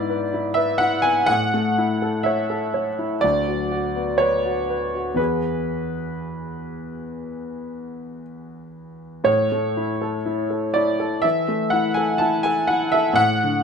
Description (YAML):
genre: classical, romantic nocturne for solo piano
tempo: 61 BPM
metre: 4/4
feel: rubato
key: A major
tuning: A4 = 437 Hz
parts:
  - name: clear grand piano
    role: solo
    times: 0.0-13.6 s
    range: D2 to A5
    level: -20 LUFS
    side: equal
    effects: none
room: moderate recital hall reverb, RT60 1.5 s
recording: close, detailed microphones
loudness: -19 LUFS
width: side -6 dB against mid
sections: 0.0-13.6 A section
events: none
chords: 0.0 E7/G#; 1.3 A; 3.2 Bm/D; 5.2 E; 9.3 A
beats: 0.35 | 1.30 2.26 3.23 4.20 | 5.18 6.18 7.17 8.21 | 9.27 10.26 11.24 12.21 | 13.19